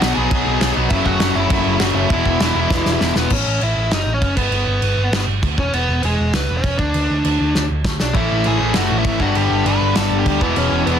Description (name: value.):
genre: punk rock.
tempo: 198 BPM.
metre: 4/4.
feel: straight.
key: unclear.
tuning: A4 = 442 Hz.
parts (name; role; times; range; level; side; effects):
dark smooth lead guitar; melody; 0.0-11.0 s; G#3 to B5; -22 LUFS; equal; overdrive.
cranked stack guitar; riff; 0.0-3.3, 8.1-11.0 s; E2 to B3; -20 LUFS; left 14 dB; overdrive.
distorted electric guitar; riff; 0.0-3.3, 8.1-11.0 s; F#2 to E4; -22 LUFS; right 13 dB; distortion.
hollow-body short-scale picked electric bass; bass; 0.0-11.0 s; E1 to D2; -21 LUFS; right 1 dB; none.
loose indie drum kit; drums; 0.0-10.9 s; crash cymbal, kick drum, snare drum; -20 LUFS; right 1 dB; none.
room: light reverb.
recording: dense, heavily limited modern master.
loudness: -15 LUFS.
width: side -8 dB against mid.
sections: 0.0-3.3 A section; 3.3-11.0 B section.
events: drum fill 2.7-3.3, 7.5-8.1; half time 3.3-11.0.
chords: 0.0 B; 0.9 F#m; 2.1 E; 3.3 A; 4.4 G; 5.6 E; 6.8 N.C.; 8.1 A; 9.2 G; 10.4 E.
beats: 0.00 0.30 0.60 | 0.90 1.20 1.50 1.80 | 2.10 2.40 2.70 3.00 | 3.31 3.61 3.91 4.21 | 4.51 4.82 5.12 5.42 | 5.73 6.03 6.33 6.63 | 6.94 7.24 7.54 7.84 | 8.15 8.45 8.75 9.05 | 9.36 9.66 9.96 10.26 | 10.56 10.87.